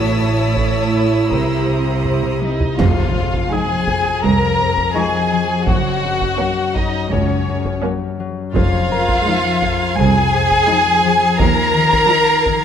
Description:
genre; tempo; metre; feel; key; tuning
cinematic, suspense film score; 84 BPM; 4/4; straight; F phrygian; A4 = 445 Hz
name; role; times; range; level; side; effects
rich chamber violin section; melody; 0.0-12.6 s; Db5 to Bb5; -20 LUFS; left 1 dB; none
rich chamber violin section; second line; 0.0-12.6 s; Db4 to C#5; -20 LUFS; left 1 dB; none
rich studio viola section; accompaniment; 0.0-12.6 s; F3 to E4; -23 LUFS; right 4 dB; none
concert harp; riff; 0.0-12.6 s; F2 to Eb4; -21 LUFS; left 6 dB; none
clear chamber double bass section; bass; 0.0-12.0 s; F1 to Eb2; -22 LUFS; right 4 dB; none
rich symphonic cello section; bass; 0.0-12.0 s; C2 to C3; -22 LUFS; right 4 dB; none
clear chamber violin section; texture; 0.0-2.4, 8.6-12.6 s; D#6 to C7; -28 LUFS; left 2 dB; none
warm grand piano; texture; 0.0-11.4 s; Bb4 to Eb6; -31 LUFS; left 1 dB; none
taiko ensemble; drums; 0.6-12.6 s; none; -24 LUFS; right 1 dB; none
impact; sound effects; 2.8-5.7 s; none; -24 LUFS; right 2 dB; none
room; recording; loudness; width
moderate concert hall reverb, RT60 2.2 s; close, detailed microphones; -14 LUFS; side -8 dB against mid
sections
0.0-2.8 A section; 2.8-12.6 B section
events
drum fill 2.0-2.8; impact 2.8-5.7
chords
0.0 A; 1.3 C7; 2.8 Fm7; 5.7 Gb; 8.5 Fm7; 11.4 Ebsus2

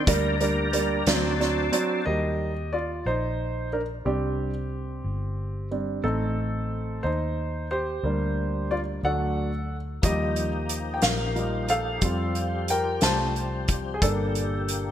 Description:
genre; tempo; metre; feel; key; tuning
six-eight pop ballad; 60 BPM (dotted quarters); 6/8; straight; unclear; A4 = 440 Hz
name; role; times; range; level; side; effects
tonewheel organ; sustained chords; 0.0-2.1, 10.0-14.9 s; Bb2 to Bb5; -32 LUFS; left 4 dB; overdrive, chorus vibrato, slow rotary speaker
vintage muted fingered electric bass; bass; 0.0-14.9 s; G1 to F2; -29 LUFS; left 1 dB; none
warm concert grand piano; accompaniment; 0.1-14.9 s; F3 to A5; -27 LUFS; right 1 dB; none
loose indie drum kit; drums; 0.1-1.9, 10.0-14.8 s; hi-hat, kick drum, snare drum; -26 LUFS; equal; gated reverb
room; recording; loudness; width
light reverb, studio ambience; bright 1980s-style digital production; -24 LUFS; side -10 dB against mid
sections
0.0-2.1 A section; 2.1-14.9 B section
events
grand piano solo 2.1-14.9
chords
0.1 Gm/D; 1.1 D7; 2.1 Eb; 4.1 Csus2; 6.0 Adim; 8.0 Gm/D; 9.0 D; 10.0 Ebadd9; 12.0 Fadd9; 14.0 Gm

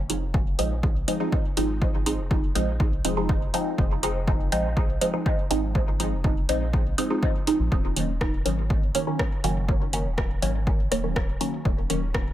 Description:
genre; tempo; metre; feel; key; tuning
dub techno; 122 BPM; 4/4; straight; F phrygian; A4 = 440 Hz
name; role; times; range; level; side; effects
round analog bass; bass; 0.0-12.3 s; Eb1 to Bb1; -28 LUFS; equal; sidechain pumping
filtered dub chord stab; stabs; 0.1-12.0 s; Eb3 to Eb4; -27 LUFS; right 1 dB; phaser, sidechain pumping, dub echo
deep house drum kit; drums; 0.1-12.2 s; hi-hat, rim click; -30 LUFS; equal; overdrive
electronic kick drum; drums; 0.3-12.2 s; none; -25 LUFS; equal; overdrive
room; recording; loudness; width
light reverb; none; -22 LUFS; side -13 dB against mid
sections
0.0-12.3 A section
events
none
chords
0.0 Fm7; 7.7 Ebm7

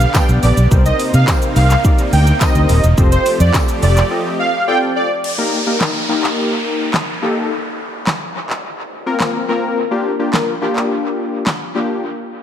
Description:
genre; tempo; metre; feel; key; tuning
dance-pop; 106 BPM; 4/4; straight; G minor; A4 = 439 Hz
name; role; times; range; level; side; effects
soft supersaw; melody; 0.0-5.1 s; C5 to G5; -19 LUFS; right 2 dB; sidechain pumping, dub echo
supersaw pad; sustained chords; 0.0-5.2 s; C3 to G4; -25 LUFS; right 2 dB; sidechain pumping
vintage muted fingered electric bass; bass; 0.0-4.0 s; Eb1 to C3; -12 LUFS; equal; sidechain pumping
pop drum kit; drums; 0.0-11.6 s; crash cymbal, handclaps, hi-hat, kick drum, shaker, snare drum; -19 LUFS; equal; dub echo
warm analog keys; accompaniment; 0.1-12.0 s; Bb3 to Eb5; -19 LUFS; left 2 dB; chorus, sidechain pumping, dub echo
tambourine; percussion; 0.1-3.7 s; none; -32 LUFS; right 12 dB; none
downlifter; sound effects; 5.2-9.8 s; none; -24 LUFS; equal; none
room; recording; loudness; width
light reverb, digital ambience; echo-heavy mix; -13 LUFS; side -10 dB against mid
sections
0.0-5.2 A section; 5.2-12.4 B section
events
drop 0.0-5.2; break 4.1-5.2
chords
0.0 G; 0.7 Cm7; 3.0 Fadd9; 5.2 Eb; 7.5 Fsus4; 9.8 Gm7

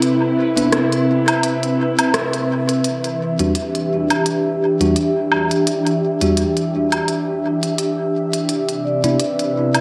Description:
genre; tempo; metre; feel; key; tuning
ambient dub; 85 BPM; 4/4; swing 56% on 16ths; E minor; A4 = 440 Hz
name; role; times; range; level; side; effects
overdriven slide guitar; melody; 0.0-2.1 s; E4; -26 LUFS; equal; dub echo
airy breathy pad; sustained chords; 0.0-9.8 s; C3 to E5; -21 LUFS; equal; chorus
organic electronic drum kit; drums; 0.0-9.8 s; hi-hat, rim click, woodblock; -24 LUFS; equal; dub echo
bell-like tine electric piano; stabs; 0.6-9.2 s; E2 to F#4; -25 LUFS; equal; low-pass filter, dub echo
vibraphone with medium mallets; arpeggios; 8.8-9.8 s; E4 to D5; -23 LUFS; equal; none
room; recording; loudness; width
moderate huge ambient reverb, RT60 6.2 s; none; -18 LUFS; mono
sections
0.0-2.8 A section; 2.8-9.8 B section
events
band accent 2.1-2.5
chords
0.0 Cmaj7; 2.8 Em7; 8.5 Cmaj7

